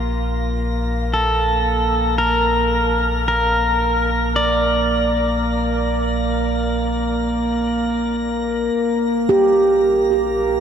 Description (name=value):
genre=ambient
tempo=55 BPM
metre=4/4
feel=straight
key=Bb major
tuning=A4 = 440 Hz
part: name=warm sub bass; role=bass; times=0.0-10.6 s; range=Bb1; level=-24 LUFS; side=left 1 dB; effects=none
part: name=hand-pumped harmonium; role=drone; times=0.0-10.6 s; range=Bb3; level=-28 LUFS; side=left 2 dB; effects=none
part: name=drifting glass-harmonics texture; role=texture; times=0.0-10.6 s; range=Bb3 to Bb6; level=-23 LUFS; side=right 1 dB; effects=chorus, built-in reverb
part: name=pedal steel guitar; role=melody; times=1.1-8.2 s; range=A4 to D5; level=-20 LUFS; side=equal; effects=diffuse ambient delay
part: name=handpan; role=arpeggios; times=9.3-10.6 s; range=G4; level=-14 LUFS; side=right 2 dB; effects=diffuse ambient delay
room=wet huge ambient reverb, RT60 8.8 s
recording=none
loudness=-16 LUFS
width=side -8 dB against mid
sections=0.0-10.6 A section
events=fade-in on synth texture 0.0-10.6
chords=0.0 Bb; 8.8 Gm/Bb